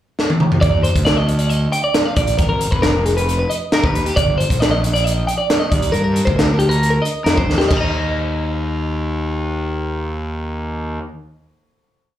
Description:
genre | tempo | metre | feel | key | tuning
math rock and midwest emo | 136 BPM | 4/4 | straight | Eb major | A4 = 439 Hz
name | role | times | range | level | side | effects
crisp fusion drum kit | drums | 0.2-7.8 s | crash cymbal, hi-hat, kick drum, snare drum, toms | -18 LUFS | equal | none
twelve-string electric guitar | arpeggios | 0.6-11.1 s | G4 to Bb5 | -20 LUFS | equal | slapback echo
fuzz fingered electric bass | bass | 0.6-11.0 s | F1 to G2 | -19 LUFS | equal | overdrive
room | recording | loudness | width
light reverb | live gig heard through the venue's PA, club reverb | -15 LUFS | side -12 dB against mid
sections
0.0-0.6 pickup bar; 0.6-7.7 A section; 7.7-11.2 final chord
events
drum fill 0.2-0.6, 7.5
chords
0.0 N.C.; 0.6 Ebmaj7(no3); 2.4 Abmadd9; 4.2 Cm9/G; 5.7 Ebmaj7; 7.7 Eb5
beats
0.18 | 0.62 1.06 1.50 1.94 | 2.38 2.83 3.27 3.71 | 4.16 4.60 5.04 5.49 | 5.93 6.37 6.81 7.26 | 7.70 8.14 8.58 9.02 | 9.46 9.89 10.33 10.77

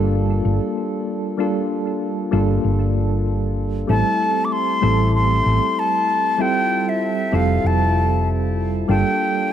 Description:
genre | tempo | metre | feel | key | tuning
sunset chillout | 96 BPM | 4/4 | straight | unclear | A4 = 435 Hz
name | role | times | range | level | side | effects
soft electric-piano-like synth keys | accompaniment | 0.0-9.5 s | G3 to A4 | -21 LUFS | right 1 dB | chorus, auto-pan, digital delay
hollow-body short-scale fingered electric bass | bass | 0.0-9.0 s | F1 to A1 | -19 LUFS | equal | none
bright baroque flute | melody | 3.9-9.5 s | E5 to D6 | -20 LUFS | left 2 dB | digital delay
room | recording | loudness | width
light reverb, small room reverb | none | -17 LUFS | side -10 dB against mid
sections
0.0-9.5 A section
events
none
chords
0.0 Gm9; 3.9 Am7; 6.4 Fmaj9; 8.9 Gm9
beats
0.14 0.77 | 1.39 2.02 2.64 3.27 | 3.89 4.52 5.14 5.77 | 6.39 7.02 7.64 8.27 | 8.89 9.52

